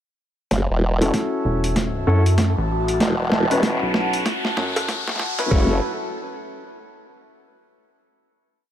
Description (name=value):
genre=glitch hop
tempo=96 BPM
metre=4/4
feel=swing 61% on 16ths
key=F# minor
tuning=A4 = 437 Hz
part: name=warm analog pad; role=sustained chords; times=0.5-5.8 s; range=F#4 to A5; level=-28 LUFS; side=equal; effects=chorus, sidechain pumping
part: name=formant-sweep wobble bass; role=bass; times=0.5-5.8 s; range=E1 to F#1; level=-20 LUFS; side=equal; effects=chorus, overdrive
part: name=boom bap sampler-style drum kit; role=drums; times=0.5-5.7 s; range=hi-hat, kick drum, snare drum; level=-24 LUFS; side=equal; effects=overdrive, high-pass filter on kick, high-pass filter on snare, high-pass filter on hats
part: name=boom bap sampler-style drum kit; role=drums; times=0.5-5.5 s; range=hi-hat, snare drum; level=-25 LUFS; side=right 1 dB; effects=overdrive
part: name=riser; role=sound effects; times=1.6-5.5 s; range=none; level=-29 LUFS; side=left 2 dB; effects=none
part: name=warm baby grand piano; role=stabs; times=1.0-5.8 s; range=C#4 to B4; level=-25 LUFS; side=left 1 dB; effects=sidechain pumping, low-pass filter, tape echo
part: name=rubbery square bass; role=bass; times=1.4-5.0 s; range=E1 to F#2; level=-21 LUFS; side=equal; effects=none
room=light reverb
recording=high-pass filter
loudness=-18 LUFS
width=side -10 dB against mid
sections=0.5-5.5 build; 5.5-8.0 final chord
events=build-up 0.5-5.5; drum fill 0.5-5.5; filter sweep on grand piano 0.5-5.5; filter sweep 0.5-5.5; riser 1.6-5.5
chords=0.5 F#m7